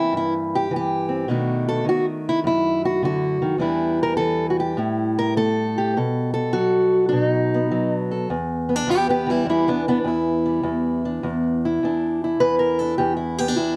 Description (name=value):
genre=acoustic country blues, solo or duo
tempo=103 BPM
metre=4/4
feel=swing 68% on 8ths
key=E minor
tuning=A4 = 441 Hz
part: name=fingerpicked steel-string acoustic guitar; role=solo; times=0.0-13.8 s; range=E2 to B4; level=-22 LUFS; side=equal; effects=none
room=light reverb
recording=dark, warm production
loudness=-22 LUFS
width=mono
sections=0.0-8.3 A section; 8.3-13.8 B section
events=steel-string acoustic guitar solo 8.3-13.8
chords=0.0 C7; 1.3 B7#9; 3.6 Em7; 4.8 A5; 6.0 B7; 8.3 Em7